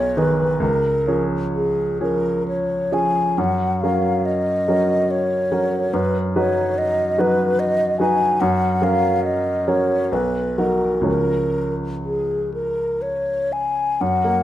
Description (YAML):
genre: classical, romantic duo for flute and grand piano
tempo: 58-74 BPM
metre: 3/4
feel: rubato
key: unclear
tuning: A4 = 440 Hz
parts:
  - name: mellow hollow concert flute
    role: melody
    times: 0.0-14.4 s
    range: G#4 to G#5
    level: -20 LUFS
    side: left 1 dB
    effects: none
  - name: clear baby grand piano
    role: accompaniment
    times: 0.0-14.4 s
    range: B1 to B4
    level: -21 LUFS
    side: right 1 dB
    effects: none
room: moderate recital hall reverb, RT60 1.4 s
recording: close, detailed microphones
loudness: -18 LUFS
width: side -13 dB against mid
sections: 0.0-14.0 A section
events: none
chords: 0.0 G#m/B; 0.6 C#; 3.4 F#; 5.9 B/F#; 8.4 F#; 10.1 B; 11.1 C#